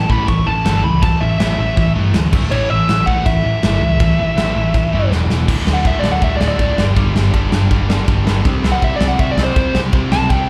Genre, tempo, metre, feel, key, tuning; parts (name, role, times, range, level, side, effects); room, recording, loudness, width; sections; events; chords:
punk rock; 162 BPM; 4/4; straight; A4 = 440 Hz
smooth overdriven lead guitar; melody; 0.0-10.5 s; C5 to C#6; -22 LUFS; equal; slapback echo
distorted electric guitar; riff; 0.0-10.5 s; D2 to C4; -25 LUFS; equal; distortion, slapback echo
distorted electric guitar; riff; 0.0-10.5 s; D2 to A4; -29 LUFS; equal; overdrive, slapback echo
overdriven electric guitar; riff; 0.0-10.5 s; D2 to C4; -27 LUFS; equal
overdriven picked electric bass; bass; 0.0-10.4 s; D1 to G2; -20 LUFS; equal
big rock drum kit; drums; 0.1-10.4 s; crash cymbal, kick drum, ride cymbal, snare drum; -20 LUFS; equal
little or no reverb; live gig heard through the venue's PA, club reverb; -15 LUFS; mono
0.0-5.5 A section; 5.5-10.5 B section
half time 0.0-5.5; drum fill 5.1-5.5; lead electric guitar solo 5.5-10.5
0.0 A; 2.3 D5; 2.5 A; 5.1 E5; 5.5 D5; 6.8 G5; 8.5 C5